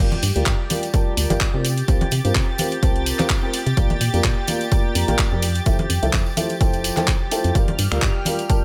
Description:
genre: piano house.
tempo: 127 BPM.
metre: 4/4.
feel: swing 55% on 16ths.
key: unclear.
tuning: A4 = 440 Hz.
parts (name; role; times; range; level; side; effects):
analog string pad; sustained chords; 0.0-8.6 s; G4 to A6; -32 LUFS; equal; ensemble chorus, sidechain pumping.
clear upright piano; riff; 0.0-8.6 s; F3 to Bb5; -28 LUFS; equal; sidechain pumping, low-pass filter, digital delay.
organ-like FM bass; bass; 0.0-8.1 s; F1 to C3; -25 LUFS; equal; sidechain pumping.
house drum kit; drums; 0.1-8.6 s; finger snaps, handclaps, hi-hat; -28 LUFS; equal; none.
congas and tambourine; percussion; 0.1-8.6 s; none; -31 LUFS; equal; none.
electronic kick drum; drums; 0.5-8.6 s; none; -22 LUFS; equal; none.
room: small room ambience.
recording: none.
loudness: -20 LUFS.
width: mono.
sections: 0.0-8.6 A section.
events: none.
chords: 0.0 Gm7; 1.6 C7sus4; 3.8 Bb6; 5.4 Fmaj7; 7.6 Gm7.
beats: 0.46 0.94 1.41 | 1.88 2.35 2.83 3.30 | 3.77 4.24 4.72 5.19 | 5.66 6.13 6.61 7.08 | 7.55 8.02 8.50.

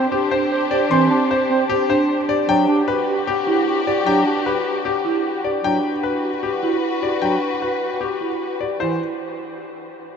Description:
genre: classical, minimalist pattern music.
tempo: 152 BPM.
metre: 4/4.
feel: straight.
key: unclear.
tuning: A4 = 440 Hz.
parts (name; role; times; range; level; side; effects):
dark clarinet; second line; 0.0-8.5 s; F#4 to C5; -26 LUFS; right 3 dB; none.
warm bass clarinet; accompaniment; 0.0-9.0 s; E3 to D4; -27 LUFS; equal; none.
rich studio string section; sustained chords; 0.0-8.6 s; D4 to B4; -26 LUFS; left 3 dB; none.
marimba with soft mallets; arpeggios; 0.0-9.0 s; C4 to C5; -23 LUFS; right 4 dB; none.
bright concert grand piano; melody; 0.1-9.0 s; G4 to C6; -23 LUFS; left 6 dB; none.
room: wet huge ambient reverb, RT60 8.8 s.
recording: in a vast, echoing space, nothing above 8.0 kHz.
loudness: -17 LUFS.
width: side -6 dB against mid.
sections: 0.0-8.8 A section; 8.8-10.2 B section.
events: none.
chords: 0.0 Csus2; 2.5 Emadd9; 8.8 N.C..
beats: 0.12 0.51 | 0.91 1.30 1.70 2.09 | 2.48 2.88 3.27 3.67 | 4.06 4.46 4.85 5.25 | 5.64 6.04 6.43 6.83 | 7.22 7.62 8.01 8.41 | 8.80.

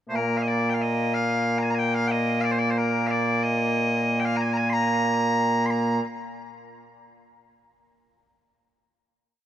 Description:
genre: scottish traditional, Scottish pipe music.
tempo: 92 BPM.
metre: 2/4.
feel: straight.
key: Bb mixolydian.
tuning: A4 = 440 Hz.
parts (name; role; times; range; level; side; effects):
loud bright bagpipes; solo; 0.1-6.0 s; Bb2 to C6; -22 LUFS; equal; none.
room: moderate huge ambient reverb, RT60 3.7 s.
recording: none.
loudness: -21 LUFS.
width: side -10 dB against mid.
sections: 0.0-0.5 pickup bar; 0.5-5.7 A section; 5.7-7.0 final note.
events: none.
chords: none.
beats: | 0.49 1.14 | 1.79 2.45 | 3.10 3.75 | 4.40 5.05 | 5.71.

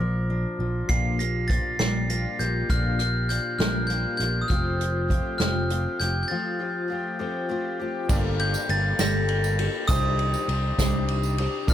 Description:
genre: indie folk with a building arrangement.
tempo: 67 BPM (dotted quarters).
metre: 6/8.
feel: straight.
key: unclear.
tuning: A4 = 444 Hz.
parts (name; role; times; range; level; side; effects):
fingerpicked steel-string acoustic guitar; accompaniment; 0.0-9.9 s; Bb2 to Bb4; -33 LUFS; left 2 dB; dub echo.
fingered electric bass; bass; 0.0-11.7 s; F1 to C2; -26 LUFS; equal; none.
glockenspiel with brass mallets; melody; 0.9-11.7 s; Eb6 to C7; -29 LUFS; right 1 dB; dub echo.
picked twelve-string acoustic guitar; accompaniment; 0.9-11.7 s; G2 to A4; -32 LUFS; left 6 dB; dub echo.
unplugged drum kit; drums; 0.9-11.7 s; hi-hat, kick drum, ride cymbal, snare drum; -27 LUFS; equal; none.
bright upright piano; accompaniment; 8.1-11.7 s; G1 to D5; -37 LUFS; right 3 dB; dub echo.
tambourine; percussion; 8.1-11.7 s; none; -38 LUFS; right 10 dB; none.
room: studio reverb.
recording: echo-heavy mix.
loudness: -22 LUFS.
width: side -11 dB against mid.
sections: 0.0-8.1 A section; 8.1-11.7 B section.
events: break 6.3-8.1.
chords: 0.0 Bb; 0.9 Gm7/Bb; 4.5 Fadd9; 8.1 Gmadd9; 9.9 Cmadd9.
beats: | 0.90 1.80 | 2.70 3.60 | 4.50 5.40 | 6.30 7.20 | 8.09 8.99 | 9.89 10.78 | 11.68.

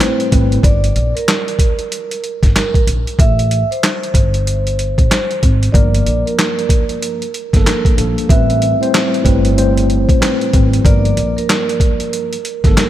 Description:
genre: hip hop, boom-bap hip-hop.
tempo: 94 BPM.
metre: 4/4.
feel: swing 62% on 16ths.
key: unclear.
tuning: A4 = 440 Hz.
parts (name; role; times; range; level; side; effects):
vibraphone with soft mallets; melody; 0.0-12.9 s; Bb4 to E5; -20 LUFS; right 2 dB; high-pass filter, low-pass filter, tape echo.
mellow tine electric piano; accompaniment; 0.0-0.6, 5.7-12.9 s; G2 to C5; -18 LUFS; left 1 dB; medium stereo tremolo, cassette tape, high-pass filter, low-pass filter.
boom bap sampler-style drum kit; drums; 0.0-12.9 s; handclaps, hi-hat, kick drum, snare drum; -14 LUFS; equal; none.
upright bass; bass; 0.3-12.7 s; G1 to Bb1; -16 LUFS; equal; none.
room: light reverb.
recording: none.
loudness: -12 LUFS.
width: side -13 dB against mid.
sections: 0.0-12.9 A section.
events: none.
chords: 0.0 Am9; 0.6 Gm; 3.2 Am7; 5.7 Gm9; 8.3 Am9; 10.8 Gm7.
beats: 0.00 | 0.64 1.27 1.91 2.55 | 3.19 3.83 4.46 5.10 | 5.74 6.38 7.02 7.66 | 8.29 8.93 9.57 10.21 | 10.85 11.49 12.12 12.76.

